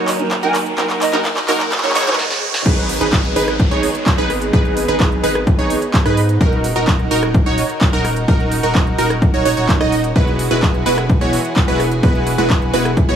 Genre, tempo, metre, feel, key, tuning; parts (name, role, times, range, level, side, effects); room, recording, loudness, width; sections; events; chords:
EDM, festival progressive house; 128 BPM; 4/4; straight; A4 = 441 Hz
dark grand piano; accompaniment; 0.0-2.2 s; F#3 to A#4; -27 LUFS; right 2 dB; vintage 12-bit sampler grit, sidechain pumping, tape echo
lush unison pad; sustained chords; 0.0-13.2 s; D#2 to A#4; -25 LUFS; right 1 dB; chorus, sidechain pumping
wide unison pluck; arpeggios; 0.0-13.2 s; A#4 to D#5; -23 LUFS; right 2 dB; phaser, sidechain pumping, tape echo
supersaw stab; riff; 0.0-13.2 s; G#3 to D#5; -20 LUFS; right 2 dB; sidechain pumping, low-pass filter, tape echo
riser, swell and downlifter; sound effects; 0.0-6.4 s; -26 LUFS; right 2 dB
big-room dance drum kit; drums; 0.1-13.2 s; crash cymbal, handclaps, hi-hat, rim click, snare drum; -23 LUFS; right 1 dB; high-pass filter on snare, high-pass filter on hats, high-pass filter on cymbals, high-pass filter on room
electronic kick drum; drums; 0.3-13.1 s; -15 LUFS; equal; high-pass filter on kick, high-pass filter on room
mellow silver concert flute; melody; 0.4-2.2 s; C#5 to G#5; -26 LUFS; right 1 dB
saturated sub bass; bass; 2.7-13.2 s; D#1 to G#2; -22 LUFS; equal; sidechain pumping
light reverb, digital ambience; high-pass filter, small room ambience; -13 LUFS; side -9 dB against mid
0.0-2.7 A section; 2.7-13.2 B section
build-up 0.0-2.7; drum fill 0.0-2.2, 2.2-2.7; riser 0.0-2.7; filter sweep on supersaw synth 0.0-2.7; filter sweep on synth pluck 0.0-2.7; filter sweep 0.0-2.7; swell 1.7-2.7; stop 2.2-2.7; drop 2.7-13.2
0.0 D#m; 2.7 G#m; 6.4 D#m; 10.2 Eadd9